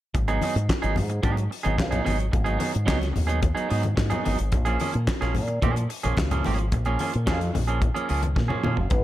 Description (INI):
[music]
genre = disco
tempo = 109 BPM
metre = 4/4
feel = straight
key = G# dorian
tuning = A4 = 440 Hz
[part]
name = electric guitar at the edge of break-up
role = accompaniment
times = 0.1-8.9 s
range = E#3 to G#4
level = -28 LUFS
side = right 4 dB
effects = none
[part]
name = fingered electric bass with an envelope filter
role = bass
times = 0.1-9.0 s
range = F#1 to A#2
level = -25 LUFS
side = equal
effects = none
[part]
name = damped 70s drum kit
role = drums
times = 0.1-9.0 s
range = handclaps, hi-hat, kick drum, snare drum, toms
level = -27 LUFS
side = equal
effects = gated reverb
[part]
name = congas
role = percussion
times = 0.1-9.0 s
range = none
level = -32 LUFS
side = left 4 dB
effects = none
[part]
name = warm French horn section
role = sustained chords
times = 8.9-9.0 s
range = G#3 to B4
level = -26 LUFS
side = left 2 dB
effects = stereo widening
[sound]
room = small room ambience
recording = none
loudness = -22 LUFS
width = side -14 dB against mid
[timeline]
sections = 0.1-9.0 A section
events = drum fill 8.4-8.9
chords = 0.1 G#m7; 4.5 A#m7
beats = | 0.14 0.69 1.24 1.79 | 2.34 2.89 3.43 3.98 | 4.53 5.08 5.63 6.18 | 6.72 7.27 7.82 8.37 | 8.92